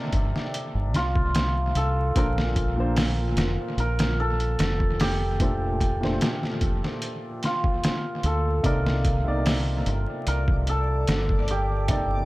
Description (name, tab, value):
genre	trip hop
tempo	74 BPM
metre	4/4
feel	straight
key	C dorian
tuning	A4 = 440 Hz
part	cimbalom	melody	0.0-12.2 s	F4 to Bb4	-29 LUFS	right 1 dB	tape echo
part	dark upright piano	accompaniment	0.0-12.2 s	Bb2 to D5	-32 LUFS	equal	tremolo, vintage 12-bit sampler grit, tape echo
part	deep dub fingered electric bass	bass	0.1-12.2 s	F1 to D2	-26 LUFS	equal	none
part	trip hop sampler-style drum kit	drums	0.1-12.1 s	hi-hat, kick drum, snare drum	-26 LUFS	equal	overdrive, studio ambience, analog delay
part	backwards swelling texture	texture	9.9-12.2 s	D5	-39 LUFS	left 2 dB	built-in reverb
room	little or no reverb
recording	echo-heavy mix, vinyl crackle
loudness	-22 LUFS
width	side -19 dB against mid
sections	0.0-12.2 A section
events	none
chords	0.0 Cm9; 2.2 Bbmaj9; 8.6 Cm9